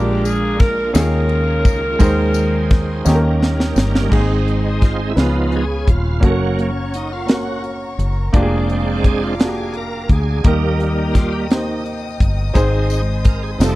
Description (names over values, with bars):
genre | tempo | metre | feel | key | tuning
slow gospel | 57 BPM (dotted quarters) | 6/8 | straight | Ab major | A4 = 438 Hz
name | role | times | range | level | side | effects
clear saxophone section | melody | 0.0-3.4 s | Db4 to Bb4 | -21 LUFS | equal | none
clear concert grand piano | accompaniment | 0.0-13.8 s | Ab2 to C5 | -22 LUFS | right 1 dB | none
bright tonewheel organ | sustained chords | 0.0-13.8 s | F3 to C5 | -23 LUFS | right 3 dB | slow rotary speaker, chorus vibrato
fingered electric bass | bass | 0.0-13.8 s | Eb1 to Eb2 | -19 LUFS | equal | none
crisp fusion drum kit | drums | 0.3-13.8 s | crash cymbal, hi-hat, kick drum, ride cymbal, snare drum | -15 LUFS | equal | none
tambourine | percussion | 0.3-4.1, 12.6-13.8 s | none | -33 LUFS | left 16 dB | none
warm studio string section | sustained chords | 4.1-13.8 s | C5 to Eb6 | -31 LUFS | left 2 dB | none
room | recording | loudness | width
little or no reverb | dry, close 1970s-style studio recording | -14 LUFS | side -18 dB against mid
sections
0.0-4.1 A section; 4.1-13.8 B section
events
drum fill 3.1-4.1; tonewheel organ solo 4.1-13.8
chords
0.0 Bb7; 1.0 Eb9sus4; 2.0 Ab/Eb; 3.1 Eb7; 4.1 Ab; 5.2 Db7; 6.2 Gb; 8.3 Bb7/F; 10.4 Eb; 12.6 Ab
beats
0.95 | 2.01 3.06 | 4.12 5.17 | 6.23 7.28 | 8.34 9.39 | 10.45 11.50 | 12.55 13.61